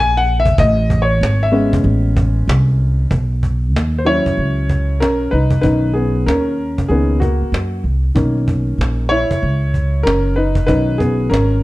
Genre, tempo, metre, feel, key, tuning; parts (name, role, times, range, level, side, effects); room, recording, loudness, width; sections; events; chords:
hip hop, jazz-hop; 95 BPM; 4/4; swing 64% on 16ths; B major; A4 = 441 Hz
warm grand piano; accompaniment; 0.0-11.6 s; D#3 to G#5; -17 LUFS; left 1 dB
upright bass; bass; 0.0-11.6 s; F#1 to F#2; -16 LUFS; equal
cajon; drums; 0.5-11.5 s; -21 LUFS; equal
light reverb, studio reverb; dark, warm production; -13 LUFS; side -18 dB against mid
0.0-3.1 A section; 3.1-11.6 B section
grand piano solo 0.0-3.1, 3.1-11.6
0.0 Amaj9; 3.1 Bmaj9